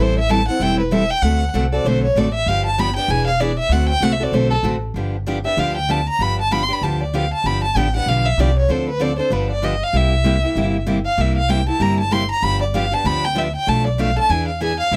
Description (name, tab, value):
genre	acoustic string swing (jazz manouche)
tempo	193 BPM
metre	4/4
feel	swing 59% on 8ths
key	G mixolydian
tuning	A4 = 438 Hz
part	warm violin	melody	0.0-15.0 s	A4 to C6	-22 LUFS	equal	none
part	picked steel-string acoustic guitar	accompaniment	0.0-15.0 s	B2 to A4	-24 LUFS	equal	none
part	upright bass	bass	0.0-15.0 s	E1 to E2	-23 LUFS	equal	none
room	light reverb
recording	close, detailed microphones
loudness	-19 LUFS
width	mono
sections	0.0-5.0 A section; 5.0-15.0 A section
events	violin solo 0.0-15.0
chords	0.0 Am7; 1.2 D7; 2.5 G7; 3.1 E7; 3.7 D7; 5.0 G7; 8.7 Dm7; 9.3 G7; 9.9 C7; 12.4 G7; 13.7 Bm7b5; 14.3 E7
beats	0.30 0.61 0.92 | 1.23 1.54 1.85 2.16 | 2.47 2.78 3.09 3.40 | 3.71 4.02 4.33 4.64 | 4.96 5.27 5.58 5.89 | 6.20 6.51 6.82 7.13 | 7.45 7.76 8.07 8.38 | 8.69 9.00 9.32 9.63 | 9.94 10.25 10.56 10.87 | 11.19 11.50 11.81 12.12 | 12.43 12.74 13.05 13.37 | 13.68 13.99 14.30 14.61 | 14.92